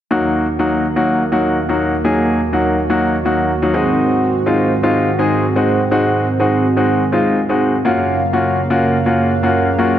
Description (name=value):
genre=pop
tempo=124 BPM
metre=4/4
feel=straight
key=Eb dorian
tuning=A4 = 439 Hz
part: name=warm grand piano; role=accompaniment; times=0.1-10.0 s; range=Gb3 to Ab4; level=-15 LUFS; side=left 1 dB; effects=none
part: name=chorused pulse-width pad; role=sustained chords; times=0.1-10.0 s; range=Eb2 to F5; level=-18 LUFS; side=right 2 dB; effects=none
room=moderate lush hall reverb, RT60 2.5 s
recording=dark, warm production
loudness=-13 LUFS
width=side -11 dB against mid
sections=0.1-10.0 A section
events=none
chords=0.1 Ebm; 3.7 Ab7; 7.9 Gbmaj7